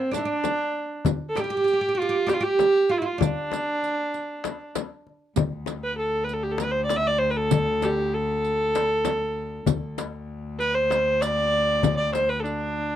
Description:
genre	Turkish makam ensemble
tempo	195 BPM (eighths)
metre	7/8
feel	straight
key	D makam huseyni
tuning	A4 = 441 Hz
part	warm viola	melody	0.0-13.0 s	C4 to E5-30c	-24 LUFS	right 1 dB	none
part	oud	second line	0.0-4.7 s	D4 to G4	-27 LUFS	right 5 dB	none
part	frame drum	percussion	0.1-12.3 s	none	-29 LUFS	left 12 dB	none
part	riq	percussion	0.1-12.5 s	none	-34 LUFS	right 16 dB	none
part	darbuka	percussion	1.0-12.5 s	none	-28 LUFS	left 4 dB	none
part	dark cello	drone	5.4-13.0 s	D2	-31 LUFS	left 3 dB	stereo widening
room	light reverb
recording	dry, close 1970s-style studio recording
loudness	-22 LUFS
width	side -11 dB against mid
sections	0.0-5.4 A section; 5.4-13.0 B section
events	none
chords	none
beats	0.13 0.44 0.74 | 1.05 1.36 1.67 1.98 2.29 2.60 2.90 | 3.21 3.52 3.83 4.14 4.44 4.75 5.06 | 5.37 5.68 5.98 6.29 6.60 6.91 7.22 | 7.52 7.83 8.14 8.45 8.76 9.06 9.37 | 9.68 9.99 10.29 10.60 10.91 11.22 11.52 | 11.83 12.14 12.45 12.75

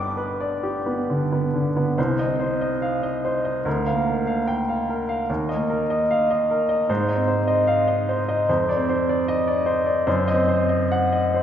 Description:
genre	classical, romantic character piece for solo piano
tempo	66-77 BPM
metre	4/4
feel	rubato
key	C minor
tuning	A4 = 435 Hz
part	clear baby grand piano	solo	0.0-11.4 s	G1 to D6	-20 LUFS	equal	none
room	wet concert hall reverb, RT60 1.9 s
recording	heard from further back in the room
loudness	-20 LUFS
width	side -9 dB against mid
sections	0.0-2.0 A section; 2.0-11.4 B section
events	none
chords	0.0 G; 2.0 Cm; 3.7 Bb/D; 5.3 Eb5; 6.9 Ab; 8.5 Dm7/F; 10.1 Cdim/Gb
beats	0.16 1.07 | 1.97 2.83 3.66 4.48 | 5.29 6.10 6.89 7.67 | 8.48 9.28 10.06 10.91

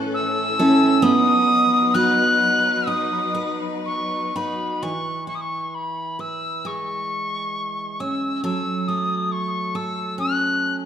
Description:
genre	celtic folk, Celtic slow air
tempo	58-71 BPM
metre	4/4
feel	rubato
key	E major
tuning	A4 = 436 Hz
part	picked steel-string acoustic guitar	accompaniment	0.0-10.9 s	A2 to B4	-23 LUFS	right 2 dB	none
part	bright studio string section	sustained chords	0.0-4.8 s	E3 to B4	-29 LUFS	left 4 dB	none
part	mellow tin whistle	melody	0.1-10.7 s	B5 to F#6	-22 LUFS	left 1 dB	none
room	moderate scoring stage reverb, RT60 1.8 s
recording	minimal, uncompressed stereo recording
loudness	-19 LUFS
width	side -9 dB against mid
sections	0.0-4.8 A section; 4.8-10.9 B section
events	none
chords	0.0 A; 1.0 B; 4.8 E6; 8.4 F#m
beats	0.15 | 1.03 1.94 2.88 3.86 | 4.83 5.75 6.65 7.55 | 8.44 9.31 10.18

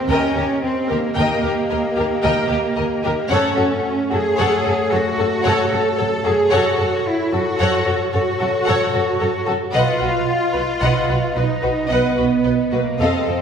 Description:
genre	cinematic, epic orchestral film score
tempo	75 BPM (dotted quarters)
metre	12/8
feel	straight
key	unclear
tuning	A4 = 441 Hz
part	rich symphonic cello section	bass	0.0-13.4 s	Bb3 to A4	-21 LUFS	right 2 dB	none
part	rich symphonic violin section	melody	0.1-13.4 s	A4 to G5	-28 LUFS	left 4 dB	none
part	rich symphonic violin section	second line	0.1-13.4 s	Gb4 to Eb5	-25 LUFS	left 3 dB	none
part	rich symphonic viola section	accompaniment	0.1-13.4 s	A4 to B4	-24 LUFS	equal	none
part	mellow French horn section	sustained chords	0.1-13.4 s	A3 to Eb5	-24 LUFS	left 2 dB	none
part	rich chamber double bass section	bass	0.1-13.4 s	B1 to Gb2	-24 LUFS	right 3 dB	none
room	wet scoring stage reverb, RT60 1.8 s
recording	heard from further back in the room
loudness	-16 LUFS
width	side -7 dB against mid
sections	0.0-13.4 A section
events	none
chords	0.0 Eb; 3.3 Gbm; 9.7 B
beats	| 0.10 0.90 1.71 2.50 | 3.31 4.12 4.92 5.72 | 6.53 7.33 8.13 8.94 | 9.74 10.55 11.35 12.17 | 13.00

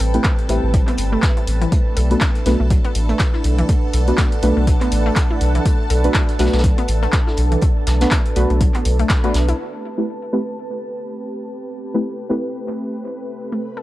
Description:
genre	deep house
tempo	122 BPM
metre	4/4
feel	swing 57% on 16ths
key	A dorian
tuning	A4 = 440 Hz
part	warm analog pad	sustained chords	0.0-13.8 s	G3 to B4	-29 LUFS	equal	chorus, sidechain pumping
part	analog pluck	arpeggios	0.0-9.5, 13.5-13.8 s	E3 to A4	-27 LUFS	left 1 dB	chorus, sidechain pumping, analog delay
part	warm sub bass	bass	0.0-9.5 s	G1 to B1	-17 LUFS	equal	sidechain pumping
part	punchy analog drum machine	drums	0.0-9.6 s	handclaps, hi-hat	-26 LUFS	left 1 dB	none
part	vintage brush drum kit	drums	0.0-9.6 s	hi-hat, snare drum	-31 LUFS	equal	high-pass filter on hats, high-pass filter on snare, high-pass filter on room
part	deep dark ambient pad	texture	0.0-13.8 s	C4 to A5	-29 LUFS	right 3 dB	chorus, built-in reverb, sidechain pumping
part	string machine, violins	texture	0.0-9.6, 13.5-13.8 s	A4 to B5	-35 LUFS	left 1 dB	ensemble chorus, sidechain pumping
part	deep mellow chord stab	stabs	0.1-12.5 s	A3 to B4	-22 LUFS	equal	chorus, cassette tape, sidechain pumping, analog delay
part	electronic kick drum	drums	0.2-9.2 s	none	-18 LUFS	equal	none
room	little or no reverb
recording	dry, gritty hardware recording, cassette tape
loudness	-15 LUFS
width	side -16 dB against mid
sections	0.0-9.6 A section; 9.6-13.8 B section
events	filter sweep on synth stab 0.0-9.6, 9.6-13.8; band accent 9.1; filter sweep on analog synth pad 9.6-13.8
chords	0.0 Am9; 1.7 Bm7; 9.6 Am9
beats	0.25 0.74 1.23 | 1.72 2.21 2.71 3.20 | 3.69 4.18 4.67 5.16 | 5.66 6.15 6.64 7.13 | 7.62 8.12 8.61 9.10 | 9.59 10.08 10.57 11.06 | 11.56 12.05 12.54 13.03 | 13.52

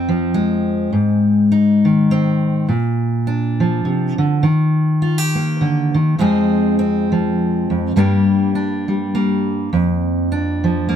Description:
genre	folk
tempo	102 BPM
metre	3/4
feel	swing 57% on 8ths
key	F dorian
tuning	A4 = 440 Hz
part	fingerpicked steel-string acoustic guitar	solo	0.0-11.0 s	F2 to Ab4	-14 LUFS	equal	none
room	light reverb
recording	close, detailed microphones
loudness	-14 LUFS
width	side -9 dB against mid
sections	0.0-11.0 A section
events	none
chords	0.0 Fm; 0.9 Ab; 2.7 Bb; 4.4 Eb; 6.2 Fm; 8.0 Gm; 9.7 Bb/F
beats	0.35 | 0.93 1.52 2.10 | 2.69 3.27 3.86 | 4.44 5.03 5.61 | 6.20 6.78 7.37 | 7.96 8.54 9.13 | 9.72 10.30 10.89

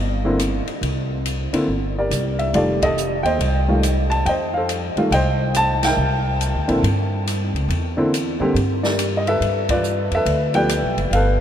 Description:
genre	jazz piano trio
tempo	140 BPM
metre	4/4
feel	swing 65% on 8ths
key	unclear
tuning	A4 = 442 Hz
part	upright bass	bass	0.0-11.4 s	F1 to G2	-22 LUFS	equal	none
part	warm upright piano	melody	0.2-11.4 s	D3 to A5	-20 LUFS	equal	none
part	open jazz drum kit	drums	0.4-11.3 s	hi-hat, kick drum, ride cymbal, rim click, snare drum	-29 LUFS	left 1 dB	none
room	wet huge ambient reverb, RT60 8.0 s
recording	in a vast, echoing space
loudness	-17 LUFS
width	side -10 dB against mid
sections	0.0-11.4 A section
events	band accent 2.8, 5.8, 9.6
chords	0.0 C7sus2; 2.5 F9; 6.0 C9; 9.4 G9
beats	0.39 | 0.82 1.25 1.68 2.11 | 2.54 2.97 3.40 3.83 | 4.26 4.69 5.12 5.55 | 5.98 6.41 6.84 7.27 | 7.70 8.12 8.55 8.98 | 9.41 9.84 10.27 10.70 | 11.13

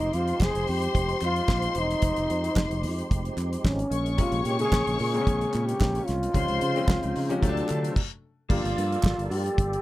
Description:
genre	disco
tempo	111 BPM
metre	4/4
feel	straight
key	F minor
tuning	A4 = 440 Hz
part	breathy trombone	melody	0.0-9.8 s	Db4 to Ab4	-28 LUFS	right 1 dB	none
part	dark studio string section	second line	0.0-7.7 s	A4 to Db6	-32 LUFS	left 4 dB	none
part	percussive tonewheel organ	sustained chords	0.0-9.8 s	Db3 to D5	-37 LUFS	right 1 dB	overdrive, chorus vibrato, slow rotary speaker
part	fingered electric bass	bass	0.0-9.8 s	E1 to D3	-29 LUFS	equal	none
part	damped 70s drum kit	drums	0.0-9.8 s	crash cymbal, hi-hat, kick drum, snare drum	-27 LUFS	equal	none
part	group handclap	percussion	0.4-9.2 s	none	-38 LUFS	right 5 dB	none
part	warm concert grand piano	accompaniment	4.2-9.8 s	C3 to G4	-32 LUFS	left 4 dB	none
room	light reverb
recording	none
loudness	-23 LUFS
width	side -16 dB against mid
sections	0.0-8.5 A section; 8.5-9.8 B section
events	stop 8.0-8.5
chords	0.0 Fm7; 3.9 Bbm9; 6.3 Dbmaj7; 7.4 D7; 8.5 Gm7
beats	0.41 0.95 1.49 | 2.03 2.57 3.11 3.65 | 4.19 4.73 5.27 5.81 | 6.35 6.89 7.43 7.97 | 8.50 9.04 9.58

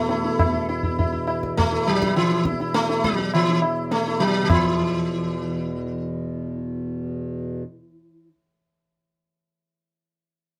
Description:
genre	indian classical, Hindustani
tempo	103 BPM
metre	4/4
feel	straight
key	unclear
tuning	A4 = 440 Hz
part	sitar	melody	0.0-8.3 s	E3 to E4	-25 LUFS	equal	none
part	pedal harmonium	drone	0.0-7.6 s	E2 to B2	-31 LUFS	equal	none
part	tabla	percussion	0.1-4.7 s	none	-27 LUFS	equal	none
room	moderate small room reverb, RT60 0.5 s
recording	none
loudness	-23 LUFS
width	mono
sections	0.0-4.5 A section; 4.5-6.8 B section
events	none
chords	none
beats	0.40 0.98 1.57 | 2.16 2.74 3.33 3.91 | 4.50 5.08 5.66 6.24

